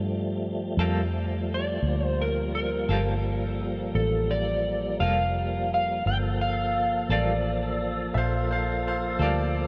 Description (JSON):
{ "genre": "slow blues", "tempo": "57 BPM (dotted quarters)", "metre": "12/8", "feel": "straight", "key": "G minor", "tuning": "A4 = 440 Hz", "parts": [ { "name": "tonewheel organ", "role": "sustained chords", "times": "0.0-9.7 s", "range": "F3 to A4", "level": "-33 LUFS", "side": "equal", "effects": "slow rotary speaker, overdrive, chorus vibrato" }, { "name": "vintage muted fingered electric bass", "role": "bass", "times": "0.0-9.7 s", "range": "F1 to G2", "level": "-31 LUFS", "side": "equal", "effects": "none" }, { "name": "semi-hollow electric guitar", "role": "accompaniment", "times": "0.8-9.4 s", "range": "G3 to A4", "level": "-36 LUFS", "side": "equal", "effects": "tremolo" }, { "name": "electric slide guitar", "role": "melody", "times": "1.5-7.9 s", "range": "A4 to G5", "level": "-31 LUFS", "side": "equal", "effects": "analog chorus" }, { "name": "bright upright piano", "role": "second line", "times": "8.1-9.7 s", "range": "C5 to F5", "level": "-32 LUFS", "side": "equal", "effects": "none" } ], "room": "wet huge ambient reverb, RT60 4.6 s", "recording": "dreamy mix soaked in reverb", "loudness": "-27 LUFS", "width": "mono", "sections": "0.0-9.7 A section", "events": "none", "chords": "0.0 Gm9", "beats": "0.79 | 1.85 2.90 3.96 5.01 | 6.06 7.11 8.16 9.21" }